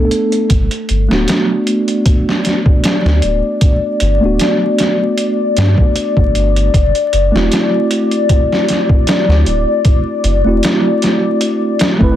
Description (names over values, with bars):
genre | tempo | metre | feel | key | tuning
trip hop | 77 BPM | 4/4 | swing 54% on 16ths | unclear | A4 = 442 Hz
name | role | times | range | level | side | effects
mellow tine electric piano | accompaniment | 0.0-12.2 s | A3 to B4 | -16 LUFS | right 1 dB | slow stereo tremolo, harmonic tremolo, tape echo
deep dark ambient pad | sustained chords | 0.0-12.2 s | A4 to D5 | -18 LUFS | left 5 dB | chorus, built-in reverb
trip hop sampler-style drum kit | drums | 0.1-12.2 s | hi-hat, kick drum, snare drum | -14 LUFS | equal | overdrive
warm sub bass | bass | 0.5-12.2 s | D1 to G2 | -14 LUFS | equal | none
room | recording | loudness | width
digital ambience | dense, heavily limited modern master, vinyl crackle | -11 LUFS | side -11 dB against mid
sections
0.5-12.2 A section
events
none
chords
0.5 Gmaj7; 6.7 D7